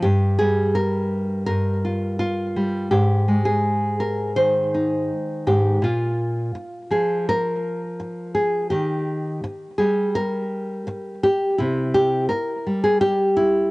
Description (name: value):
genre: folk, solo fingerstyle acoustic guitar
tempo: 83 BPM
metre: 4/4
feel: straight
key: unclear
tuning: A4 = 440 Hz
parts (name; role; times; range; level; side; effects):
- nylon-string guitar; solo; 0.0-13.7 s; G2 to C5; -19 LUFS; equal; cassette tape
room: light reverb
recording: home recording on cassette, nothing above 10.3 kHz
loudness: -19 LUFS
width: side -22 dB against mid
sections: 0.0-5.8 A section; 5.8-13.7 B section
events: none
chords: 0.0 Gm7; 2.9 Ab; 5.8 Bb5; 8.7 Eb; 11.6 C